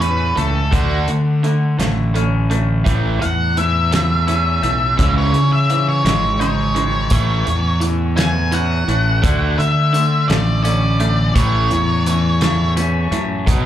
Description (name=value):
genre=indie rock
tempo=56 BPM (dotted quarters)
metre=6/8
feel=straight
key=unclear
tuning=A4 = 445 Hz
part: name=octave-fuzz lead guitar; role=melody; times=0.0-12.7 s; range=F#4 to G#5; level=-20 LUFS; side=equal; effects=distortion, plate reverb, slapback echo, tape echo
part: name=clean electric guitar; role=riff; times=0.0-13.7 s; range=A2 to D#4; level=-26 LUFS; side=left 7 dB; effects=spring reverb, slapback echo
part: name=overdriven electric guitar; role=riff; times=0.0-13.7 s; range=A2 to D4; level=-24 LUFS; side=right 6 dB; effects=wide subtle chorus
part: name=fuzz fingered electric bass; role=bass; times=0.0-13.7 s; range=G#1 to D3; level=-17 LUFS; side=equal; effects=overdrive
part: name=loose indie drum kit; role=drums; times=0.0-13.6 s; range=hi-hat, kick drum, snare drum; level=-20 LUFS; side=equal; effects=none
part: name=tambourine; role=percussion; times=7.1-13.6 s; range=none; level=-34 LUFS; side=left 3 dB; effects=none
room=light reverb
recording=live gig heard through the venue's PA, club reverb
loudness=-14 LUFS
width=side -11 dB against mid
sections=0.0-13.7 A section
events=lead electric guitar solo 0.0-13.7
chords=0.0 A; 0.7 D5; 2.9 A; 5.0 C#madd9; 7.1 A; 9.2 D5; 11.4 A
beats=| 0.73 1.79 | 2.86 3.93 | 4.99 6.06 | 7.12 8.18 | 9.24 10.30 | 11.36 12.41 | 13.47